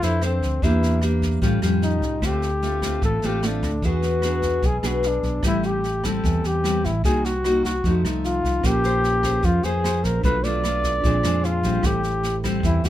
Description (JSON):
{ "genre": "bossa nova", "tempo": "150 BPM", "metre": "4/4", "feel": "straight", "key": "unclear", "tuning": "A4 = 440 Hz", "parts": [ { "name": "breathy flugelhorn", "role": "melody", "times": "0.0-12.9 s", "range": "C4 to D5", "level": "-24 LUFS", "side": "left 1 dB", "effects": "none" }, { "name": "nylon-string guitar", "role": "accompaniment", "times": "0.0-12.9 s", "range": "A2 to C5", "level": "-25 LUFS", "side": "left 1 dB", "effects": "none" }, { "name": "fingered electric bass", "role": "bass", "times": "0.0-12.9 s", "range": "A1 to F2", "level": "-24 LUFS", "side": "right 1 dB", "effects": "none" }, { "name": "jazz brush drum kit", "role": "drums", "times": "0.0-12.9 s", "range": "kick drum, rim click, snare drum", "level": "-27 LUFS", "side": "equal", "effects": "none" }, { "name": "bell-like tine electric piano", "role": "accompaniment", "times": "8.6-12.9 s", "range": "Db4 to C5", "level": "-32 LUFS", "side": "right 3 dB", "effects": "none" } ], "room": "moderate small room reverb, RT60 0.6 s", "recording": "minimal, uncompressed stereo recording", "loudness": "-19 LUFS", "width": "side -13 dB against mid", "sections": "0.0-12.9 A section", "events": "none", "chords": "0.0 Bbmaj9 (rootless); 0.6 Em7b5; 1.4 A7alt; 2.2 Dm7; 3.8 E7; 5.4 Am7; 7.0 Cm7b5; 7.8 F7b9; 8.6 Bbm9; 10.2 Bm7b5; 11.0 Bb9; 11.8 Am7" }